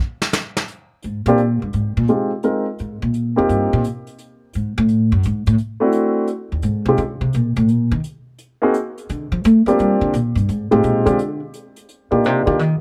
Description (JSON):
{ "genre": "jazz piano trio", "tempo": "172 BPM", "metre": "4/4", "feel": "swing 66% on 8ths", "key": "Bb major", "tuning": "A4 = 444 Hz", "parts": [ { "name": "vintage brush drum kit", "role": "drums", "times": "0.2-12.7 s", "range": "hi-hat, snare drum", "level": "-25 LUFS", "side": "equal", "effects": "none" }, { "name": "upright bass", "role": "bass", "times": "1.0-12.8 s", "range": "Eb2 to A3", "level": "-20 LUFS", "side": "equal", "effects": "none" }, { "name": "warm grand piano", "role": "melody", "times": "1.3-12.6 s", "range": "Ab3 to Bb4", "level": "-19 LUFS", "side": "equal", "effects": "plate reverb" } ], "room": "light reverb", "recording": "none", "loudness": "-18 LUFS", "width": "mono", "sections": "0.7-11.9 A section", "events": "upright bass solo 0.7-12.8", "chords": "0.0 N.C.; 2.1 Fm7; 2.8 Bb5; 3.5 Eb69; 4.9 D9; 6.3 Dbmaj7sus2; 7.7 Absus2 (rootless); 9.1 Bb6; 10.5 Fm7; 11.2 N.C.; 11.9 Ebmaj9", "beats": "0.34 | 0.69 1.04 1.39 1.74 | 2.09 2.44 2.79 3.14 | 3.50 3.85 4.20 4.54 | 4.89 5.25 5.59 5.94 | 6.29 6.64 6.99 7.34 | 7.69 8.04 8.39 8.74 | 9.09 9.44 9.79 10.13 | 10.48 10.83 11.18 11.53 | 11.88 12.23 12.59" }